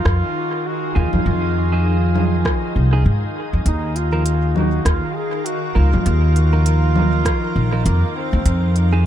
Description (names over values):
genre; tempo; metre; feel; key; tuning
ambient dub; 100 BPM; 4/4; swing 58% on 16ths; unclear; A4 = 439 Hz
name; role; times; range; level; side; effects
clear trombone; melody; 0.0-8.8 s; Bb3 to Ab4; -25 LUFS; right 1 dB; dub echo
soft additive organ-like pad; sustained chords; 0.0-9.1 s; Eb3 to F5; -26 LUFS; equal; ensemble chorus, built-in reverb
upright bass; bass; 0.0-9.1 s; Bb1 to Ab2; -16 LUFS; equal; none
electronic kick drum; drums; 0.1-7.4 s; none; -22 LUFS; equal; none
organic electronic drum kit; drums; 0.1-8.9 s; congas, hi-hat, rim click; -25 LUFS; right 1 dB; dub echo
clean electric guitar; stabs; 1.0-9.0 s; F3 to Bb4; -28 LUFS; right 3 dB; dub echo
room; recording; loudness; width
little or no reverb; echo-heavy mix; -16 LUFS; side -11 dB against mid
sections
0.0-9.1 A section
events
none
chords
0.0 Fm7; 3.7 Ebsus2; 8.5 Fm7